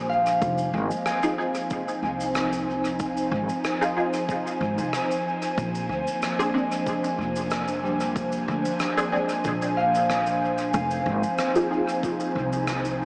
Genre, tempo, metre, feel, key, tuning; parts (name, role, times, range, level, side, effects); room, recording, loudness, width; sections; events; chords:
ambient dub; 93 BPM; 4/4; swing 53% on 16ths; F dorian; A4 = 439 Hz
airy breathy pad; sustained chords; 0.0-13.1 s; F3 to Ab5; -26 LUFS; equal; chorus
concert harp; arpeggios; 0.0-12.6 s; G3 to Ab5; -29 LUFS; equal; dub echo
filtered dub chord stab; stabs; 0.0-13.1 s; Ab3 to Ab4; -29 LUFS; equal; phaser, ensemble chorus, dub echo
upright bass; bass; 0.0-13.1 s; F1 to D2; -30 LUFS; equal; tube saturation
shaker and rim click; drums; 0.3-13.0 s; -33 LUFS; equal; dub echo
electronic kick drum; drums; 0.4-12.2 s; -33 LUFS; equal; overdrive
moderate huge ambient reverb, RT60 4.3 s; vinyl crackle, small speaker sound; -23 LUFS; side -29 dB against mid
0.0-13.1 A section
0.4 Fm7; 5.6 Bb9; 10.7 Fm7